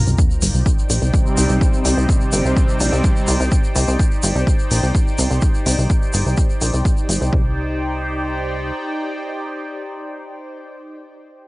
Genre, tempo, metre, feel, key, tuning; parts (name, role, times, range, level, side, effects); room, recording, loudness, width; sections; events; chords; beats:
melodic techno; 126 BPM; 4/4; straight; C minor; A4 = 439 Hz
evolving wavetable pad; sustained chords; 0.0-10.6 s; Eb4 to G5; -25 LUFS; equal; phaser, built-in reverb, sidechain pumping, cassette tape
plucky analog bass; bass; 0.0-8.7 s; G1 to C2; -18 LUFS; equal; sidechain pumping
sub drop; sound effects; 0.0-1.6 s; -25 LUFS; equal
tube shaker; percussion; 0.1-7.3 s; -27 LUFS; left 1 dB
electronic kick drum; drums; 0.2-7.4 s; -17 LUFS; equal
electronic hi-hat; drums; 0.4-7.2 s; -26 LUFS; equal
brassy analog pad; stabs; 1.1-3.3 s; C3 to C4; -22 LUFS; right 1 dB; chorus, sidechain pumping, cassette tape, analog delay
little or no reverb; home recording on cassette, nothing above 10.5 kHz; -15 LUFS; side -21 dB against mid
0.0-7.3 A section; 7.3-11.1 B section
impact 0.0-1.6
0.0 Cmadd9
0.18 0.66 1.14 | 1.61 2.09 2.57 3.04 | 3.52 4.00 4.47 4.95 | 5.42 5.90 6.38 6.85 | 7.33 7.80 8.28 8.76 | 9.23 9.71 10.19